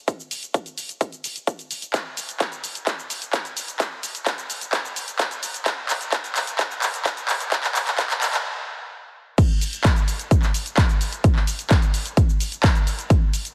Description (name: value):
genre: EDM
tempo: 129 BPM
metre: 4/4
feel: straight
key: none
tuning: none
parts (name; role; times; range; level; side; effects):
- big-room dance drum kit; drums; 0.1-13.5 s; cabasa, crash cymbal, handclaps, hi-hat; -28 LUFS; equal; high-pass filter on hats, high-pass filter on perc, high-pass filter on snare, high-pass filter on cymbals
- electronic kick drum; drums; 0.1-13.2 s; none; -21 LUFS; equal; high-pass filter on kick
room: moderate lush hall reverb, RT60 2.0 s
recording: heavily compressed radio sound, multiband compression, high-pass filter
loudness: -23 LUFS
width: mono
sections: 0.0-9.4 A section; 9.4-13.5 B section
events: build-up 0.0-9.4; drum fill 1.9-8.5; stop 8.5-9.4; drop 9.4-13.5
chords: none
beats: | 0.08 0.54 1.01 1.47 | 1.94 2.40 2.87 3.33 | 3.80 4.26 4.73 5.20 | 5.66 6.12 6.59 7.05 | 7.52 7.99 8.45 8.92 | 9.38 9.85 10.31 10.78 | 11.24 11.71 12.17 12.64 | 13.10